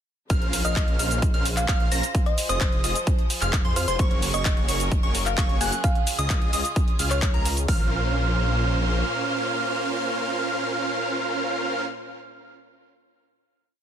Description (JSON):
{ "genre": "EDM, festival progressive house", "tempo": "130 BPM", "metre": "4/4", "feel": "straight", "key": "Bb minor", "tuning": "A4 = 439 Hz", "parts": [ { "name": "rich chamber string section", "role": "sustained chords", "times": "0.3-11.8 s", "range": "Bb2 to C5", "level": "-34 LUFS", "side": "equal", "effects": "sidechain pumping" }, { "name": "plucky unison lead", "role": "arpeggios", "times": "0.3-11.8 s", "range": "Bb5 to Bb6", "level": "-30 LUFS", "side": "right 1 dB", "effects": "sidechain pumping, digital delay" }, { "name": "supersaw chords", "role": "riff", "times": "0.3-11.8 s", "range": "Bb3 to Bb5", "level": "-29 LUFS", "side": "right 2 dB", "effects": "sidechain pumping, digital delay" }, { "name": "wide detuned saw bass", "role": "bass", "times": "0.3-9.0 s", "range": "F1 to F2", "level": "-27 LUFS", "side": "equal", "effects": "chorus, sidechain pumping" }, { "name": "big-room dance drum kit", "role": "drums", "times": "0.3-7.8 s", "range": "hi-hat, kick drum", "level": "-22 LUFS", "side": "equal", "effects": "overdrive, small room ambience" }, { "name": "big-room dance drum kit", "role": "drums", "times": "0.3-7.7 s", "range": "cabasa, handclaps, hi-hat", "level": "-28 LUFS", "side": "left 1 dB", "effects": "overdrive, small room ambience" }, { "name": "thumb-piano-like synth pluck", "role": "melody", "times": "0.6-7.7 s", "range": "C5 to Ab5", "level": "-32 LUFS", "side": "left 1 dB", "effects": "chorus, vintage 12-bit sampler grit, digital delay" } ], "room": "digital ambience", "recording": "dense, heavily limited modern master", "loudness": "-21 LUFS", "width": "side -9 dB against mid", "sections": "0.3-7.7 drop; 7.7-11.4 final chord", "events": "drop 0.3-7.7", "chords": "0.3 Bbmadd9; 2.1 Fm; 4.0 Gbadd9; 5.8 Db; 7.7 Bbmadd9" }